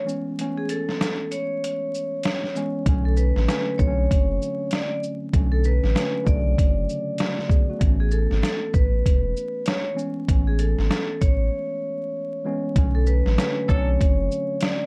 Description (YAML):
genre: hip hop, boom-bap hip-hop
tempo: 97 BPM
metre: 4/4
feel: swing 61% on 16ths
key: B dorian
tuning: A4 = 440 Hz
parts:
  - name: vibraphone with medium hard mallets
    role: melody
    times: 0.0-14.9 s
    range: G#4 to D5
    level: -30 LUFS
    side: equal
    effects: high-pass filter, low-pass filter, slapback echo
  - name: mellow tine electric piano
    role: accompaniment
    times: 0.0-14.9 s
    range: C#3 to G#4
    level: -32 LUFS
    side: equal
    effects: high-pass filter, low-pass filter
  - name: trip hop sampler-style drum kit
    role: drums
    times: 0.1-14.8 s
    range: hi-hat, kick drum, shaker, snare drum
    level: -24 LUFS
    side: equal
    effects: none
  - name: soft dub sub bass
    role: bass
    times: 2.9-14.3 s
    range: E1 to B1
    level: -24 LUFS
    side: equal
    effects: none
  - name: mellow trumpet section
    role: stabs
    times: 13.7-13.9 s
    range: F#3 to A4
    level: -37 LUFS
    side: equal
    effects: high-pass filter, low-pass filter, slapback echo
room: light reverb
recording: dark, warm production, vinyl crackle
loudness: -23 LUFS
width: mono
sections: 0.0-12.8 A section; 12.8-14.9 B section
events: break 0.0-2.9, 11.5-12.8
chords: 0.0 Amaj7; 2.9 Bm7; 7.8 Amaj7; 12.8 Bm7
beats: | 0.39 1.01 1.62 2.24 | 2.86 3.48 4.10 4.72 | 5.34 5.95 6.57 7.19 | 7.81 8.43 9.05 9.67 | 10.28 10.90 11.52 12.14 | 12.76 13.38 13.99 14.61